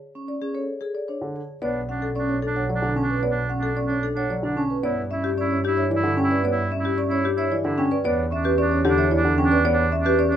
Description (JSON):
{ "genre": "classical, minimalist pattern music", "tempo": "112 BPM", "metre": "3/4", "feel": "straight", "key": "B minor", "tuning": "A4 = 438 Hz", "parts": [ { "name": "vibraphone with medium mallets", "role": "arpeggios", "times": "0.2-10.4 s", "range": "C#4 to C#5", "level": "-26 LUFS", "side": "right 3 dB", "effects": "none" }, { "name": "marimba with medium hard mallets", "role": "melody", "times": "0.3-10.4 s", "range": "G4 to A5", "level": "-26 LUFS", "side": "left 6 dB", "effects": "none" }, { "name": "warm grand piano", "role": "accompaniment", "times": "1.2-9.8 s", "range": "D3 to C#4", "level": "-26 LUFS", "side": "equal", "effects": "none" }, { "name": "warm oboe", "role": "second line", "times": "1.6-10.4 s", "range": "D4 to E4", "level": "-27 LUFS", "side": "right 3 dB", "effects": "none" }, { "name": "warm double bass", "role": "bass", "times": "1.6-10.4 s", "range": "B1 to G2", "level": "-27 LUFS", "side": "right 2 dB", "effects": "none" } ], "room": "light reverb", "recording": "none", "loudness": "-20 LUFS", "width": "side -10 dB against mid", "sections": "0.0-1.6 A section; 1.6-10.4 B section", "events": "none", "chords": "0.0 D5; 1.6 Bm7; 4.8 G6; 8.1 Em7" }